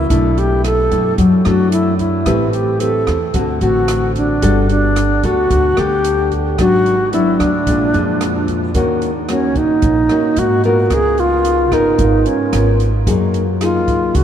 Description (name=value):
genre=bossa nova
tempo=111 BPM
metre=4/4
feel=straight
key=Eb minor from 8.7 s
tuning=A4 = 440 Hz
part: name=bright reedy wooden-headed alto flute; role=melody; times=0.0-14.2 s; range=Db4 to A4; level=-16 LUFS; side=right 1 dB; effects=none
part: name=nylon-string guitar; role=accompaniment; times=0.0-14.2 s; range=G#2 to B4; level=-17 LUFS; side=left 2 dB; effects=none
part: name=upright bass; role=bass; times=0.0-14.2 s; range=G1 to Ab2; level=-18 LUFS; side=right 1 dB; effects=none
part: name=open jazz drum kit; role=drums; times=0.1-14.2 s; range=hi-hat, kick drum, rim click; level=-24 LUFS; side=right 1 dB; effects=none
room=moderate cathedral reverb, RT60 6.8 s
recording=in a vast, echoing space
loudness=-12 LUFS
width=side -9 dB against mid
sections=0.0-8.7 A section; 8.7-14.2 B section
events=none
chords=0.1 Bm7; 2.3 Am9; 3.3 D7; 4.4 Gmaj9; 6.6 G#m7b5; 7.7 A#7; 8.7 Ebm7; 10.9 Db13; 13.1 Gb69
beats=| 0.10 0.64 1.18 1.72 | 2.26 2.80 3.34 3.88 | 4.42 4.96 5.51 6.05 | 6.59 7.13 7.67 8.21 | 8.75 9.29 9.83 10.37 | 10.91 11.45 11.99 12.53 | 13.07 13.61 14.15